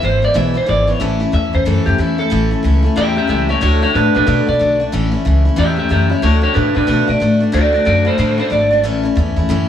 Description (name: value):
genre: rockabilly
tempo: 184 BPM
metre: 4/4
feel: swing 62% on 8ths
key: A major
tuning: A4 = 440 Hz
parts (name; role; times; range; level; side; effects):
- electric guitar through a small old amp; melody; 0.0-8.8 s; D4 to E5; -16 LUFS; equal; spring reverb, plate reverb, analog delay
- picked steel-string acoustic guitar; accompaniment; 0.0-9.7 s; E2 to F#4; -18 LUFS; left 3 dB; plate reverb
- upright bass; bass; 0.0-9.6 s; G#1 to B2; -16 LUFS; equal; none
room: moderate studio reverb, RT60 0.6 s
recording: none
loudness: -12 LUFS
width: side -10 dB against mid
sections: 0.0-1.0 A section; 1.0-9.7 A section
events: none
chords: 0.0 E; 1.0 A; 3.6 D; 4.9 A; 6.2 D; 8.8 A